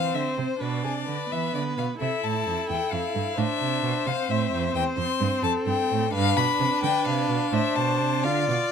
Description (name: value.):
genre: quick classical-period movement for string quartet.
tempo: 87 BPM (dotted quarters).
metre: 6/8.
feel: rubato.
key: A minor.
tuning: A4 = 440 Hz.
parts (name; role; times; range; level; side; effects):
clear violin; melody; 0.0-8.7 s; C5 to C6; -28 LUFS; left 10 dB; none.
clear violin; second line; 0.0-8.7 s; G#4 to D5; -29 LUFS; left 3 dB; none.
clear viola; accompaniment; 0.0-8.7 s; B3 to F4; -30 LUFS; right 3 dB; none.
rich cello; bass; 0.0-8.6 s; E2 to E3; -28 LUFS; right 6 dB; none.
room: light reverb.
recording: close, detailed microphones.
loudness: -23 LUFS.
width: side -7 dB against mid.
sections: 0.0-8.7 A section.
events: none.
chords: 0.0 Am (rootless); 0.6 E5/B; 2.0 Am; 4.7 N.C.; 5.4 F (rootless); 6.1 G7; 7.5 Am.